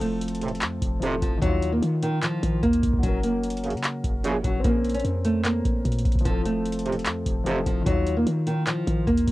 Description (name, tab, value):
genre	hip hop, trap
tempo	149 BPM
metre	4/4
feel	half-time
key	unclear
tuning	A4 = 443 Hz
part	nylon-string guitar	melody	0.0-9.3 s	Eb3 to Db4	-26 LUFS	right 1 dB	low-pass filter, cassette tape
part	dark concert grand piano	accompaniment	0.0-9.3 s	Eb3 to Bb4	-31 LUFS	left 3 dB	low-pass filter
part	warm 808-style bass	bass	0.0-9.3 s	F1 to Eb3	-28 LUFS	equal	none
part	booming analog drum machine	drums	0.0-9.3 s	handclaps, hi-hat, kick drum	-26 LUFS	equal	cassette tape
part	warm brass ensemble	stabs	0.4-1.1, 3.6-4.4, 6.9-7.6 s	A1 to Db3	-30 LUFS	right 2 dB	plate reverb, analog delay
room	little or no reverb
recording	home recording on cassette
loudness	-22 LUFS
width	side -17 dB against mid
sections	0.0-9.3 A section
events	none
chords	0.0 F; 1.4 Ebsus2; 3.0 Gb; 4.6 Bbmadd9; 6.3 F; 7.9 Ebsus2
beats	0.21 0.62 1.02 | 1.42 1.82 2.23 2.63 | 3.03 3.44 3.84 4.24 | 4.64 5.05 5.45 5.85 | 6.25 6.66 7.06 7.46 | 7.87 8.27 8.67 9.07